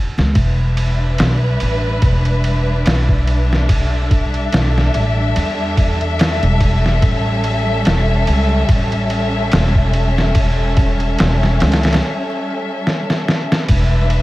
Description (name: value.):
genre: trip hop.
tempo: 72 BPM.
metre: 4/4.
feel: swing 56% on 16ths.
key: E dorian.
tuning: A4 = 440 Hz.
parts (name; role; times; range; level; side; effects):
upright bass; bass; 0.2-14.2 s; E1 to E2; -16 LUFS; equal; none.
trip hop sampler-style drum kit; drums; 0.2-14.2 s; kick drum, ride cymbal, snare drum; -18 LUFS; equal; none.
warm studio string section; sustained chords; 0.3-14.2 s; G3 to E5; -20 LUFS; left 1 dB; vintage 12-bit sampler grit.
room: light reverb, studio reverb.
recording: vinyl crackle.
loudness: -13 LUFS.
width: side -17 dB against mid.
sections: 0.0-13.7 A section.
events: break 12.0-13.7; drum fill 12.9-13.7.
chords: 0.4 Em7; 7.0 A7; 13.7 Em7.